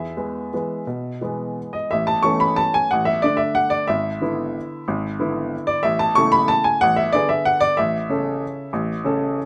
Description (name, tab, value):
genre	classical, piano waltz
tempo	164-202 BPM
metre	3/4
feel	rubato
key	A major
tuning	A4 = 440 Hz
part	clear upright piano	solo	0.0-9.5 s	G#1 to C#6	-21 LUFS	equal	none
room	light reverb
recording	none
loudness	-21 LUFS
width	mono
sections	0.0-1.9 A section; 1.9-9.5 B section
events	none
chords	0.0 E; 1.9 A; 2.9 D5/A; 3.9 E7/G#; 5.9 A; 6.8 E9; 7.8 A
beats	0.15 0.52 | 0.87 1.21 1.57 | 1.92 2.25 2.58 | 2.91 3.23 3.56 | 3.89 4.22 4.56 | 4.88 5.21 5.53 | 5.85 6.17 6.50 | 6.82 7.13 7.46 | 7.78 8.10 8.42 | 8.74 9.04 9.37